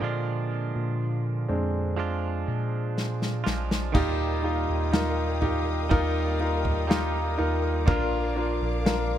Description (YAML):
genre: pop ballad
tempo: 61 BPM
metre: 4/4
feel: straight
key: unclear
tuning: A4 = 441 Hz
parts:
  - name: clear concert grand piano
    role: accompaniment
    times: 0.0-9.2 s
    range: Bb2 to D5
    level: -28 LUFS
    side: left 1 dB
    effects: none
  - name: direct-recorded clean electric guitar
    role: arpeggios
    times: 0.0-9.2 s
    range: Bb2 to F4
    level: -33 LUFS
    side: right 7 dB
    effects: tape echo
  - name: mellow tine electric piano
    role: bass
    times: 0.0-9.2 s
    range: Bb1 to Bb2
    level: -29 LUFS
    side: equal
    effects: analog chorus
  - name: natural country drum kit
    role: drums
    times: 3.0-9.1 s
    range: crash cymbal, kick drum, snare drum, toms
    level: -26 LUFS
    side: equal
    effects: none
  - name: warm studio string section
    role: sustained chords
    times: 3.9-9.2 s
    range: Bb4 to Eb6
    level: -37 LUFS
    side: left 3 dB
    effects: none
room: light reverb, small room reverb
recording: none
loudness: -24 LUFS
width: side -10 dB against mid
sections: 0.0-3.9 A section; 3.9-9.2 B section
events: grand piano solo 0.0-3.9; drum fill 3.0-3.9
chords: 0.0 Bb7; 3.9 Ebadd9; 7.9 Bb